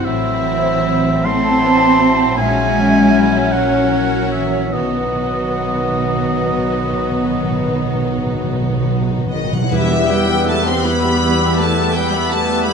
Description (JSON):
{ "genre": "classical, slow romantic movement for symphony orchestra", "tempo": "47-56 BPM (dotted quarters)", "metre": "12/8", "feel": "rubato", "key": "E minor", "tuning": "A4 = 440 Hz", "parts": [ { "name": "clear studio violin section", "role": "melody", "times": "0.0-12.7 s", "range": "D#4 to C6", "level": "-24 LUFS", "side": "left 4 dB", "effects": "none" }, { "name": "mellow hollow flute section", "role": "second line", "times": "0.0-12.7 s", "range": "B4 to E6", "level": "-23 LUFS", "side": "equal", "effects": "none" }, { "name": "rich studio violin section", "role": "second line", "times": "0.0-12.7 s", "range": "C#4 to E5", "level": "-28 LUFS", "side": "left 2 dB", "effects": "none" }, { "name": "warm oboe", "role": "second line", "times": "0.0-12.7 s", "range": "B4 to C6", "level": "-22 LUFS", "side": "right 2 dB", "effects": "none" }, { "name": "rich studio viola section", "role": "accompaniment", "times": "0.0-12.7 s", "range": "G3 to G4", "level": "-25 LUFS", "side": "equal", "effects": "none" }, { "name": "warm French horn section", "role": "sustained chords", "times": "0.0-12.7 s", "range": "D#3 to C#4", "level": "-25 LUFS", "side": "left 5 dB", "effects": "none" }, { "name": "concert harp", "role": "arpeggios", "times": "0.0-12.7 s", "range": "A2 to C#5", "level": "-28 LUFS", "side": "left 10 dB", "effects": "none" }, { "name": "warm studio cello section", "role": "bass", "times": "0.0-12.7 s", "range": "D#3 to C4", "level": "-21 LUFS", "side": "right 2 dB", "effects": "none" }, { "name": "warm studio double bass section", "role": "bass", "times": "0.0-12.7 s", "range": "A1 to E2", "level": "-24 LUFS", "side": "right 2 dB", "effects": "none" }, { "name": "clear clarinet", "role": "second line", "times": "0.1-12.7 s", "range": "B3 to G4", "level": "-25 LUFS", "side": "left 3 dB", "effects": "none" }, { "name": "clear bassoon", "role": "accompaniment", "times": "0.1-12.7 s", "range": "F#3 to B3", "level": "-26 LUFS", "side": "right 3 dB", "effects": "none" }, { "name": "timpani", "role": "percussion", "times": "4.7-10.8 s", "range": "E2 to B2", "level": "-23 LUFS", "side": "right 2 dB", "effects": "none" }, { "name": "mellow trombone section", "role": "sustained chords", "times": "9.7-12.7 s", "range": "G3 to B3", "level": "-26 LUFS", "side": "right 4 dB", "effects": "none" } ], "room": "moderate concert hall reverb, RT60 1.7 s", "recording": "nothing above 10.8 kHz", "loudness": "-14 LUFS", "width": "side -6 dB against mid", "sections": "0.0-9.7 A section; 9.7-12.7 B section", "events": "timpani fill 4.7-9.7", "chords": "0.1 F#m7b5/A; 2.4 F#7/A#; 4.7 B; 9.7 Em", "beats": "| 0.07 1.26 2.39 3.53 | 4.74 5.98 7.23 8.47 | 9.71 10.85 11.94" }